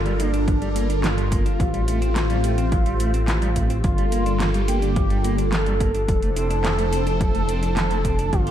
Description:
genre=synthwave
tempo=107 BPM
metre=4/4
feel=straight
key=G dorian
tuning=A4 = 440 Hz
part: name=expressive synth lead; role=melody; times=0.0-8.5 s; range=D4 to A4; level=-26 LUFS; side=equal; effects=analog chorus, digital delay
part: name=phased analog pad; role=sustained chords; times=0.0-8.5 s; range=F3 to C5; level=-28 LUFS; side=equal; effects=phaser, chorus, sidechain pumping
part: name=clean electric guitar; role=arpeggios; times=0.0-8.5 s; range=E3 to G4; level=-30 LUFS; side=right 2 dB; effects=tremolo, digital delay
part: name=dark detuned saw bass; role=bass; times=0.0-8.5 s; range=F1 to A1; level=-23 LUFS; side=equal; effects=none
part: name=pop drum kit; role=drums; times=0.1-8.5 s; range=handclaps, hi-hat, shaker, snare drum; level=-29 LUFS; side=equal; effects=none
part: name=electronic kick drum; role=drums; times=0.5-8.4 s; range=none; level=-23 LUFS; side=equal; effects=overdrive
room=light reverb, digital ambience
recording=dark, warm production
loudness=-19 LUFS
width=side -10 dB against mid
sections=0.0-8.5 A section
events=none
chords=0.0 Gm7; 1.6 Am7; 3.8 Gm7; 6.1 Dm7/F

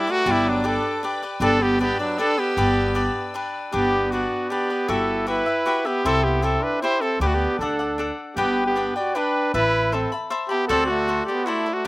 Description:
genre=mexican folk, mariachi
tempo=156 BPM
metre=3/4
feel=straight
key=G major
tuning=A4 = 442 Hz
part: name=clear trumpet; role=melody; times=0.0-11.9 s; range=D4 to D5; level=-23 LUFS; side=equal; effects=slapback echo
part: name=mellow trumpet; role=second line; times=0.0-11.9 s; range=F#3 to F#4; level=-27 LUFS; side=right 2 dB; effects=slapback echo
part: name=cavaquinho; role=accompaniment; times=0.0-11.9 s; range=D4 to B5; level=-26 LUFS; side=left 2 dB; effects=slapback echo
part: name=rich symphonic violin section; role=sustained chords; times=0.0-3.7 s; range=B4 to E6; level=-36 LUFS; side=right 1 dB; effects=none
part: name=upright bass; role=bass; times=0.3-11.2 s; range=G1 to D2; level=-26 LUFS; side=equal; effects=none
room=little or no reverb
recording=recorded outdoors, with no room sound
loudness=-20 LUFS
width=side -20 dB against mid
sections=0.0-3.7 A section; 3.7-11.9 B section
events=none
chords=0.0 G; 4.9 Emadd9/G; 6.0 C; 7.2 G/D; 7.6 D; 8.4 G; 9.5 Amadd9; 10.7 D7

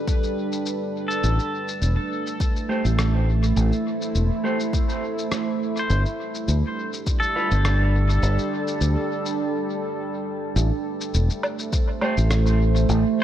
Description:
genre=ambient dub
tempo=103 BPM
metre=4/4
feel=swing 54% on 16ths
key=A minor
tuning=A4 = 440 Hz
part: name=deep dark ambient pad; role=sustained chords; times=0.0-13.2 s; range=G3 to C5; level=-26 LUFS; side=right 2 dB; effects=chorus, built-in reverb
part: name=electronic kick drum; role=drums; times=0.1-7.2, 11.7-11.9 s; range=none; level=-22 LUFS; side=equal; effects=overdrive
part: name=electronic shaker, rim click and woodblock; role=drums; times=0.1-13.0 s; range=none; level=-32 LUFS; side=left 1 dB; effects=dub echo
part: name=pedal steel guitar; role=arpeggios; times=1.1-8.6 s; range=A4 to C5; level=-30 LUFS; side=left 1 dB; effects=dub echo
part: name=fingered electric bass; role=bass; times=1.2-13.0 s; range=E1 to D2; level=-19 LUFS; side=equal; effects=none
part: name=mellow electric guitar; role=stabs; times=2.7-7.5, 12.0-12.1 s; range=G3 to C5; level=-30 LUFS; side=right 1 dB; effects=dub echo
room=light reverb, digital ambience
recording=none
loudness=-20 LUFS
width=side -11 dB against mid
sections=0.0-10.6 A section; 10.6-13.2 B section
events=break 9.4-10.6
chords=0.0 G; 1.2 Am; 5.9 G; 10.6 Am7

